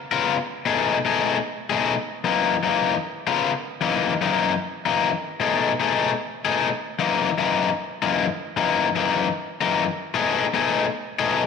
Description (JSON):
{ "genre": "blues", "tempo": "152 BPM", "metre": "4/4", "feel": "swing 64% on 8ths", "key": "F# mixolydian", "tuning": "A4 = 440 Hz", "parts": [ { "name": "cranked stack guitar", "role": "solo", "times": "0.1-11.4 s", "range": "F#2 to A#4", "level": "-20 LUFS", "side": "left 6 dB", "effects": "overdrive" } ], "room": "wet echo chamber reverb, RT60 1.7 s, digital ambience", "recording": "none", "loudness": "-20 LUFS", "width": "side -5 dB against mid", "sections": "0.0-3.8 A section; 3.8-11.5 B section", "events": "none", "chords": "0.0 C#6; 0.7 B6; 2.2 F#6; 3.0 C#6; 3.8 F#6; 5.4 B6; 7.0 F#6; 10.1 B6" }